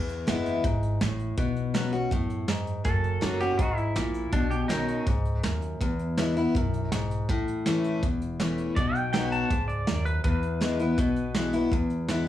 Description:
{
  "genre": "honky-tonk and classic country",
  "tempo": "162 BPM",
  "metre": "4/4",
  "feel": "straight",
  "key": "E major",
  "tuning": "A4 = 440 Hz",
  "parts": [
    { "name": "picked steel-string acoustic guitar", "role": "accompaniment", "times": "0.0-12.3 s", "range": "E2 to F#4", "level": "-28 LUFS", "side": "left 2 dB", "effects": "cassette tape" },
    { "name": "upright bass", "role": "bass", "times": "0.0-12.3 s", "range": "E1 to F#2", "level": "-32 LUFS", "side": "right 1 dB", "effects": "none" },
    { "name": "soft brush drum kit", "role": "drums", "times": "0.1-12.2 s", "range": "hi-hat, kick drum, snare drum", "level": "-29 LUFS", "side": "right 1 dB", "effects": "cassette tape" },
    { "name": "pedal steel guitar", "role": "second line", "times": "2.9-5.0, 8.8-11.3 s", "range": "D4 to A5", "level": "-31 LUFS", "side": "right 1 dB", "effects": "cassette tape" }
  ],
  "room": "moderate booth ambience, RT60 0.2 s",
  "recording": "home recording on cassette, studio ambience",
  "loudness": "-24 LUFS",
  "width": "side -12 dB against mid",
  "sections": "0.0-11.7 A section",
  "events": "none",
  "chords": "0.0 E; 1.4 Bsus2; 2.9 F#; 4.3 Badd9; 5.8 E; 7.3 A; 8.8 B; 10.2 E"
}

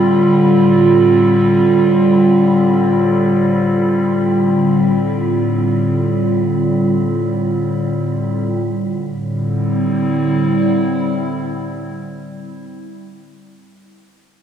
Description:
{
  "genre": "ambient",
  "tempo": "free time",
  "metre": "none",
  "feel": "none",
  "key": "A minor",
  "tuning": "A4 = 439 Hz",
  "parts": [
    { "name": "warbly tape-like pad", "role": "sustained chords", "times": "0.0-12.6 s", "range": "A2 to F4", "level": "-13 LUFS", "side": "equal", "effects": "chorus, built-in reverb, phaser" },
    { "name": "wind-like tuned noise texture", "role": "texture", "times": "0.0-8.5 s", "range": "B5", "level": "-33 LUFS", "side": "equal", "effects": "built-in reverb" }
  ],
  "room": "wet plate reverb, RT60 2.8 s",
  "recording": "dreamy mix soaked in reverb, cassette tape",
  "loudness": "-13 LUFS",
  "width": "side -9 dB against mid",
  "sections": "0.0-8.5 A section; 8.5-12.5 B section",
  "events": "fade-out on synth texture 0.0-8.5",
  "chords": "0.0 Dm/A; 8.5 Am7"
}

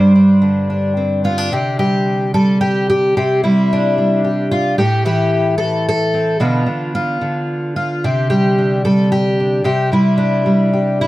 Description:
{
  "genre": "folk, solo fingerstyle acoustic guitar",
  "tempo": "111 BPM",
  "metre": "3/4",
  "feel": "straight",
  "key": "unclear",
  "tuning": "A4 = 438 Hz",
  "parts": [
    { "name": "fingerpicked twelve-string acoustic guitar", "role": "solo", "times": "0.0-11.1 s", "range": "G2 to C5", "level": "-13 LUFS", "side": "equal", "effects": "none" }
  ],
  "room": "light reverb",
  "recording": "close, detailed microphones",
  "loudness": "-13 LUFS",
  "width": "side -16 dB against mid",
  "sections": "0.0-1.5 A section; 1.5-11.1 B section",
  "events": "none",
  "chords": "0.0 Gsus4; 1.5 Csus2; 4.8 Am; 6.4 Bdim; 8.0 Csus2"
}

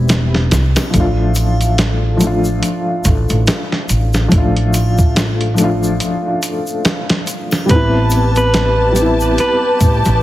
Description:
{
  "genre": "trip hop",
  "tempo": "71 BPM",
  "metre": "4/4",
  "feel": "swing 58% on 16ths",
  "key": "unclear",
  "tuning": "A4 = 440 Hz",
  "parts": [
    { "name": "felt-muted upright piano", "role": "accompaniment", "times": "0.0-10.2 s", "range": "F3 to F4", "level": "-18 LUFS", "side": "left 1 dB", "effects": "tremolo, vintage 12-bit sampler grit, tape echo" },
    { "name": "upright bass", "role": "bass", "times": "0.0-10.2 s", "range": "E1 to C2", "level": "-15 LUFS", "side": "equal", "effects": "none" },
    { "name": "dusty soul sampler-style drum kit", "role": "drums", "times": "0.1-10.2 s", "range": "hi-hat, kick drum, snare drum", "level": "-16 LUFS", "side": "equal", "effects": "none" },
    { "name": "egg shaker and triangle", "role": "percussion", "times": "0.1-10.2 s", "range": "none", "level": "-30 LUFS", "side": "left 2 dB", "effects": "none" },
    { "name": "electric guitar at the edge of break-up", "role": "melody", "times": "7.7-9.8 s", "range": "B4", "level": "-18 LUFS", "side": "right 1 dB", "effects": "tape echo" },
    { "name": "warm studio string section", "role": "sustained chords", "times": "7.7-10.2 s", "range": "G4 to A5", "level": "-19 LUFS", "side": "left 1 dB", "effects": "none" }
  ],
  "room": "light reverb",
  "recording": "heavily compressed radio sound, multiband compression",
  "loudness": "-12 LUFS",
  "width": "side -15 dB against mid",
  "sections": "0.0-10.2 A section",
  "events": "break 6.0-7.7",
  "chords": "0.0 Am9 (rootless); 0.9 Dm/A; 7.7 Am9"
}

